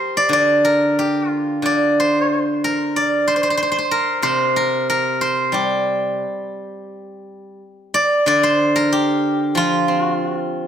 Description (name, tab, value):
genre	chinese traditional, Chinese solo plucked strings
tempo	92 BPM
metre	2/4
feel	rubato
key	G yu mode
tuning	A4 = 440 Hz
part	steel-string zither	solo	0.0-10.7 s	C3 to D5	-16 LUFS	equal	none
room	moderate scoring stage reverb, RT60 1.7 s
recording	none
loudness	-16 LUFS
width	side -9 dB against mid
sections	0.0-6.9 A section; 6.9-10.7 B section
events	none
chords	none